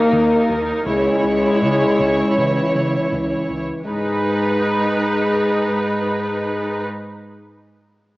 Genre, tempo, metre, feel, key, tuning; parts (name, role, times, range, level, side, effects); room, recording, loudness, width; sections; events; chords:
cinematic; 80 BPM; 4/4; straight; G# minor; A4 = 438 Hz
rich symphonic viola section; accompaniment; 0.0-6.8 s; D#4 to C#5; -20 LUFS; right 1 dB
mellow French horn section; sustained chords; 0.0-6.8 s; E3 to A#3; -19 LUFS; left 1 dB
clear symphonic cello section; bass; 0.0-6.8 s; C#2 to G#2; -26 LUFS; right 1 dB
resonant blip pluck; arpeggios; 0.1-3.7 s; C#3 to C#4; -36 LUFS; equal
smooth gliding synth bass; riff; 0.1-3.7 s; C#2 to C#3; -28 LUFS; equal
moderate scoring stage reverb, RT60 1.9 s; small speaker sound; -16 LUFS; side -19 dB against mid
0.0-3.9 A section; 3.9-6.9 B section
0.0 D#; 0.9 C#m; 3.9 G#m